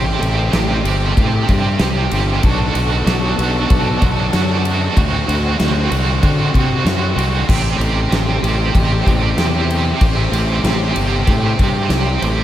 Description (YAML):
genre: post-rock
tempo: 95 BPM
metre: 4/4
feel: straight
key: A dorian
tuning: A4 = 440 Hz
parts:
  - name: clear symphonic string section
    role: sustained chords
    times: 0.0-12.4 s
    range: C3 to A4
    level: -26 LUFS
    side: left 4 dB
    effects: none
  - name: overdriven electric guitar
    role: riff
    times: 0.0-12.4 s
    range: C4 to G4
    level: -20 LUFS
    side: right 5 dB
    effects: tremolo
  - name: fuzz fingered electric bass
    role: bass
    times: 0.0-12.4 s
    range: G1 to D3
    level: -18 LUFS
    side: equal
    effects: overdrive
  - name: huge arena drum kit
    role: drums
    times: 0.2-12.4 s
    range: crash cymbal, kick drum, ride cymbal, snare drum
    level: -18 LUFS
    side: equal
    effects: none
room: light reverb, studio reverb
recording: none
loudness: -14 LUFS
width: side -12 dB against mid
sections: 0.0-12.4 A section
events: none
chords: 0.0 Am7; 2.4 Bm7; 5.0 D7; 7.5 Am7